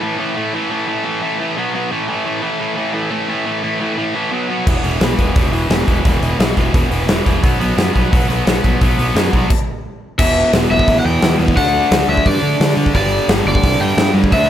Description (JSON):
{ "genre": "punk rock", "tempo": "174 BPM", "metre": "4/4", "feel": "straight", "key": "E minor from 10.2 s", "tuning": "A4 = 435 Hz", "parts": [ { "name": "tight distorted guitar", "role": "riff", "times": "0.0-14.5 s", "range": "E2 to D4", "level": "-18 LUFS", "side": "equal", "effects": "distortion" }, { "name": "fuzz picked electric bass", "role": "bass", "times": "4.7-14.5 s", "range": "E1 to D3", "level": "-19 LUFS", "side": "equal", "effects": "overdrive" }, { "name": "big rock drum kit", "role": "drums", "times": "4.7-14.4 s", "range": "crash cymbal, hi-hat, kick drum, snare drum", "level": "-16 LUFS", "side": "equal", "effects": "none" }, { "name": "overdriven semi-hollow guitar", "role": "melody", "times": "10.2-14.5 s", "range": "D5 to G5", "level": "-17 LUFS", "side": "left 1 dB", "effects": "none" } ], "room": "little or no reverb", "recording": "none", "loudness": "-13 LUFS", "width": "side -11 dB against mid", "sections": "0.0-10.2 A section; 10.2-14.5 B section", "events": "stop 9.5-10.2", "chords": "0.0 A5; 1.6 B5; 1.9 A5; 4.3 B5; 4.7 E5; 7.4 B5; 10.2 Em; 11.6 D; 12.9 G5" }